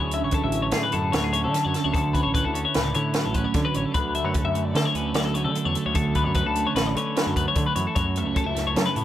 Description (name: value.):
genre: math rock and midwest emo.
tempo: 149 BPM.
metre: 5/4.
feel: straight.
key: unclear.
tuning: A4 = 440 Hz.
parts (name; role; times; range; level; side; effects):
twelve-string electric guitar; accompaniment; 0.0-9.0 s; F#2 to G#4; -27 LUFS; right 5 dB; phaser.
twelve-string electric guitar; arpeggios; 0.0-9.0 s; G#4 to E5; -26 LUFS; left 5 dB; spring reverb, digital delay.
growling picked electric bass; bass; 0.0-9.0 s; A1 to F#3; -28 LUFS; equal; overdrive.
compact cocktail drum kit; drums; 0.1-9.0 s; hi-hat, kick drum, snare drum; -27 LUFS; equal; none.
room: light reverb.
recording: none.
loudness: -21 LUFS.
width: side -12 dB against mid.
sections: 0.0-9.0 A section.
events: none.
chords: 0.0 Dmaj9#11; 4.0 Bm9/D; 8.0 F#m7.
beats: 0.34 0.74 1.14 1.54 | 1.94 2.34 2.75 3.15 3.55 | 3.95 4.35 4.75 5.16 5.56 | 5.96 6.36 6.76 7.16 7.56 | 7.96 8.37 8.77.